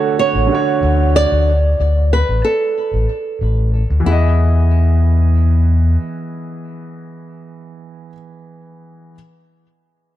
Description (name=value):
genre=sunset chillout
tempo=93 BPM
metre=4/4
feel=straight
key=E major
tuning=A4 = 440 Hz
part: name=flamenco guitar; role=melody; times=0.0-8.1 s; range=E4 to D5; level=-19 LUFS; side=right 2 dB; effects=tape echo
part: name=dark baby grand piano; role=accompaniment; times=0.0-9.2 s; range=D3 to D#5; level=-21 LUFS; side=moving between left 2 dB and right 9 dB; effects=auto-pan, tape echo
part: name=overdriven fingered electric bass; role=bass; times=0.3-6.0 s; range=A1 to E2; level=-13 LUFS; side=left 1 dB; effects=none
room=light reverb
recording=dark, warm production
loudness=-12 LUFS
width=side -13 dB against mid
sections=0.0-4.1 A section; 4.1-6.6 B section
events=none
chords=0.0 Dmaj7; 4.1 Emaj7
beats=0.18 0.83 | 1.47 2.12 2.77 3.41 | 4.05 4.70 5.34 5.99